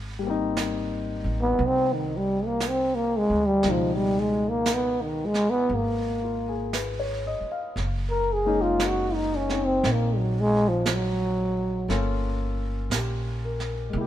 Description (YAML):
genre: jazz ballad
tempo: 58 BPM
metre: 4/4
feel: swing 66% on 8ths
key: unclear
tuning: A4 = 440 Hz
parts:
  - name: upright bass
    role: bass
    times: 0.0-14.1 s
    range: Gb1 to D2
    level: -30 LUFS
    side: right 1 dB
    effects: none
  - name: warm concert grand piano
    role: accompaniment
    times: 0.2-14.1 s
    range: Cb3 to F5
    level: -31 LUFS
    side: left 4 dB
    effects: none
  - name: vintage brush drum kit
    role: drums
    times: 0.6-14.1 s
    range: brushed snare drum, hi-hat, snare drum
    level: -33 LUFS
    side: right 4 dB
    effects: none
  - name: growling trombone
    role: melody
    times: 1.4-11.9 s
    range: Eb3 to Bb4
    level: -23 LUFS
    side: equal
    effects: none
room: light reverb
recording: minimal, uncompressed stereo recording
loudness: -23 LUFS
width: side -12 dB against mid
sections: 0.0-14.1 A section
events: trombone solo 0.0-14.1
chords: 0.0 Abmaj9; 3.6 Db7; 7.8 Gb69; 11.9 Gm7b5